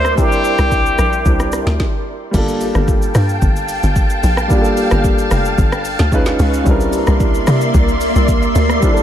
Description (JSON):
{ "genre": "amapiano", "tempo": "111 BPM", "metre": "4/4", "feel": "straight", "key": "G dorian", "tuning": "A4 = 440 Hz", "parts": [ { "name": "trumpet with plunger mute", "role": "melody", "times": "0.0-1.8 s", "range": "G4 to C5", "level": "-18 LUFS", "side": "left 1 dB", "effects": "analog delay" }, { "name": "warm grand piano", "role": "accompaniment", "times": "0.0-9.0 s", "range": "G3 to B4", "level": "-19 LUFS", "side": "equal", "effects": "analog delay" }, { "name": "soft string machine", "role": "sustained chords", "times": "0.0-9.0 s", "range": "Bb3 to C#6", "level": "-20 LUFS", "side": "equal", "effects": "ensemble chorus" }, { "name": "tight log drum bass", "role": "bass", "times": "0.0-8.8 s", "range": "F1 to C3", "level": "-16 LUFS", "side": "equal", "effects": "none" }, { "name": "afro-pop drum kit", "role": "drums", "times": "0.0-9.0 s", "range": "crash cymbal, hi-hat, kick drum, rim click, shaker, snare drum", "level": "-17 LUFS", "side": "equal", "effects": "none" } ], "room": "light reverb, digital ambience", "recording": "echo-heavy mix", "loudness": "-12 LUFS", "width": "side -10 dB against mid", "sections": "0.0-2.3 A section; 2.3-9.0 B section", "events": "stop 1.8-2.3; drop 2.3-9.0", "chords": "0.0 C9; 2.3 Gm9; 6.1 C#9; 6.7 C9", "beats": "| 0.18 0.72 1.26 1.80 | 2.34 2.88 3.42 3.96 | 4.50 5.04 5.58 6.12 | 6.66 7.21 7.75 8.29 | 8.83" }